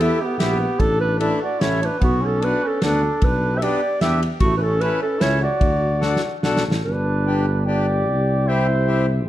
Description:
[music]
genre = alpine folk, alpine dance band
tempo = 150 BPM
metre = 3/4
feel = swing 54% on 8ths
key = D major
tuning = A4 = 440 Hz
[part]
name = mellow clarinet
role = melody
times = 0.0-9.1 s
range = F#4 to E5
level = -23 LUFS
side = right 1 dB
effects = none
[part]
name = dark trumpet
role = second line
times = 0.0-9.3 s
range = A3 to G4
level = -26 LUFS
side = right 1 dB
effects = none
[part]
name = accordion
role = accompaniment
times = 0.0-9.1 s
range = A3 to A4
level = -26 LUFS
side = left 3 dB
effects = none
[part]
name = dark tuba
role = bass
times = 0.0-9.3 s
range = G1 to E2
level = -22 LUFS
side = equal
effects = none
[part]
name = loose indie drum kit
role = drums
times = 0.0-6.8 s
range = kick drum, ride cymbal, snare drum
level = -23 LUFS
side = equal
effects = none
[sound]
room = moderate recital hall reverb, RT60 1.4 s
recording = dark, warm production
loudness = -17 LUFS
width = side -13 dB against mid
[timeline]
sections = 0.0-6.9 A section; 6.9-9.3 B section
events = drum fill 6.0-6.9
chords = 0.0 Em; 0.8 Asus4; 1.6 A; 2.0 Bm; 3.2 G/B; 4.4 A; 5.6 D; 6.9 G; 8.1 C

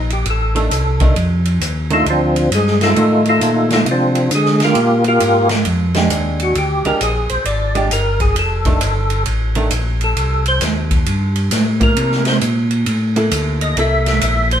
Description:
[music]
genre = soul jazz organ trio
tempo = 133 BPM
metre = 4/4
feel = swing 65% on 8ths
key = F mixolydian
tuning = A4 = 440 Hz
[part]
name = percussive tonewheel organ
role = melody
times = 0.0-14.6 s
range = F3 to E5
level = -17 LUFS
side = equal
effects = slow rotary speaker, chorus vibrato
[part]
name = mellow tonewheel organ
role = bass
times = 0.0-14.6 s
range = F1 to D3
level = -17 LUFS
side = equal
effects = overdrive, chorus vibrato, slow rotary speaker
[part]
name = swinging big-band drum kit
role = drums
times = 0.1-14.6 s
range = hi-hat, kick drum, ride cymbal, snare drum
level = -20 LUFS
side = right 1 dB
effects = none
[part]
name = archtop guitar, miked and amplified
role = accompaniment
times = 0.6-14.6 s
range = Eb3 to A4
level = -22 LUFS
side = right 2 dB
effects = none
[sound]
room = moderate stone room reverb, RT60 1.2 s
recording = band playing live in one room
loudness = -13 LUFS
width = side -9 dB against mid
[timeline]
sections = 0.0-14.6 A section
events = tonewheel organ solo 0.0-14.6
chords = 0.0 F13; 4.8 Bb6; 8.4 F9; 12.0 C13

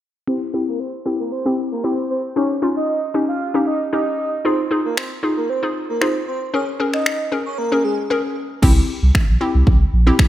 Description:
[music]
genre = dance-pop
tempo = 115 BPM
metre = 4/4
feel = straight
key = unclear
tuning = A4 = 440 Hz
[part]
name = airy dreamy lead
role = melody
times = 0.3-8.0 s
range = Ab4 to F5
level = -24 LUFS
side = right 2 dB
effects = chorus, sidechain pumping, low-pass filter, tape echo
[part]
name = hollow square pluck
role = accompaniment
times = 0.3-10.3 s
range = C4 to Bb4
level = -20 LUFS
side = left 2 dB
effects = chorus, low-pass filter
[part]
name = pop drum kit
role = drums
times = 5.0-10.3 s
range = crash cymbal, finger snaps, kick drum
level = -16 LUFS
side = equal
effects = none
[part]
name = warm sub bass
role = bass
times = 8.6-10.1 s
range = Bb1 to C2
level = -15 LUFS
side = equal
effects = sidechain pumping
[sound]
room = light reverb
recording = none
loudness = -17 LUFS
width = side -13 dB against mid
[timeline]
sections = 0.3-8.6 A section; 8.6-10.3 B section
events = filter sweep 0.3-8.6; break 8.1-8.6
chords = 0.3 C; 2.4 Eb7; 4.5 Fm7; 6.5 Bbm7; 8.6 C

